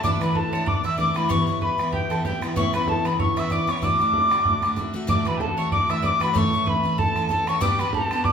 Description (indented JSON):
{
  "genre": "celtic folk, Celtic reel",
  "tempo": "190 BPM",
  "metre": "4/4",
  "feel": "swing 56% on 8ths",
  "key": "D major",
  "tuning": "A4 = 441 Hz",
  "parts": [
    { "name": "reedy wooden whistle", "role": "melody", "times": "0.0-8.3 s", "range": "G5 to E6", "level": "-23 LUFS", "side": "left 2 dB", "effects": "none" },
    { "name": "breathy mellow mid whistle", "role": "second line", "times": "0.0-8.3 s", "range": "G5 to E6", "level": "-34 LUFS", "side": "left 4 dB", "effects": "none" },
    { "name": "mandolin", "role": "second line", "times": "0.0-8.3 s", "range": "G4 to E5", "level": "-30 LUFS", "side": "right 4 dB", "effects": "none" },
    { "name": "picked steel-string acoustic guitar", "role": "accompaniment", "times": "0.0-8.3 s", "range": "G2 to A4", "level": "-26 LUFS", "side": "equal", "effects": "none" },
    { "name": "bodhran", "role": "percussion", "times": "0.0-8.3 s", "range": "none", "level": "-27 LUFS", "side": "right 2 dB", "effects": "none" }
  ],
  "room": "wet large studio reverb, RT60 1.1 s",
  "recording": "band playing live in one room",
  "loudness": "-20 LUFS",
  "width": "side -7 dB against mid",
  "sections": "0.0-5.1 A section; 5.1-8.3 A section",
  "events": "none",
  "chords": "0.0 Dsus2; 1.3 G6; 2.6 Aadd9; 3.8 D; 5.1 Dadd9; 6.4 A; 7.6 G",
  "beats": "| 0.04 0.36 0.67 0.99 | 1.30 1.62 1.93 2.25 | 2.56 2.88 3.19 3.51 | 3.83 4.14 4.46 4.77 | 5.09 5.41 5.72 6.04 | 6.35 6.67 6.98 7.30 | 7.61 7.93 8.24"
}